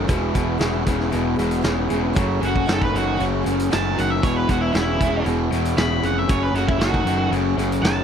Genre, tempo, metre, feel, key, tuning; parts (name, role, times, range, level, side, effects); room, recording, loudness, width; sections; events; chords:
classic rock; 116 BPM; 4/4; straight; F# dorian; A4 = 440 Hz
picked twelve-string acoustic guitar; accompaniment; 0.0-8.0 s; F#2 to G#4; -30 LUFS; right 10 dB
tonewheel organ; sustained chords; 0.0-8.0 s; B3 to A4; -35 LUFS; equal
crunchy overdriven guitar; riff; 0.0-8.0 s; E2 to D#3; -24 LUFS; left 14 dB
distorted electric guitar; riff; 0.0-8.0 s; E2 to D#3; -27 LUFS; right 14 dB; overdrive
growling picked electric bass; bass; 0.0-8.0 s; E1 to F#1; -24 LUFS; equal; overdrive
vintage drum kit; drums; 0.1-8.0 s; hi-hat, kick drum, snare drum; -24 LUFS; equal
octave-fuzz lead guitar; melody; 2.4-8.0 s; E4 to B5; -25 LUFS; right 3 dB; distortion, slapback echo
small room ambience; dry, close 1970s-style studio recording; -18 LUFS; side -8 dB against mid
0.0-8.0 A section
lead electric guitar solo 0.0-8.0
0.1 E; 2.2 F#m; 4.2 E; 6.3 F#m